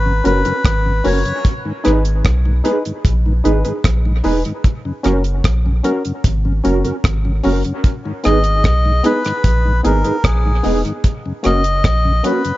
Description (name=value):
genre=dub reggae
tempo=75 BPM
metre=4/4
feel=straight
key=G# minor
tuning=A4 = 440 Hz
part: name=melodica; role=melody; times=0.0-1.5, 8.3-12.6 s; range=G#4 to D#5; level=-20 LUFS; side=left 2 dB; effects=dub echo
part: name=soft dub sub bass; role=bass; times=0.0-12.2 s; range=E1 to B1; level=-16 LUFS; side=equal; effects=none
part: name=mellow tonewheel organ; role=accompaniment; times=0.1-12.5 s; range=F#2 to D#4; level=-23 LUFS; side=left 2 dB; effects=slow rotary speaker
part: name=percussive organ stab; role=stabs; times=0.2-12.4 s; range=A#3 to B4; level=-23 LUFS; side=left 2 dB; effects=chorus, dub echo
part: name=deep reggae drum kit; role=drums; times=0.2-12.6 s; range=hi-hat, kick drum, rim click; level=-18 LUFS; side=equal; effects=none
part: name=mellow electric guitar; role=accompaniment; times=0.3-12.4 s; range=C#4 to B4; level=-23 LUFS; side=right 5 dB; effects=ensemble chorus, dub echo
room=light reverb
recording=nothing above 7.5 kHz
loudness=-14 LUFS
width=side -16 dB against mid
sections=0.0-12.6 A section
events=none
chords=0.0 F#; 1.4 G#m; 4.6 F#; 7.8 G#m; 11.0 F#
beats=0.65 | 1.45 2.25 3.04 3.85 | 4.64 5.45 6.25 7.04 | 7.84 8.64 9.45 10.24 | 11.04 11.85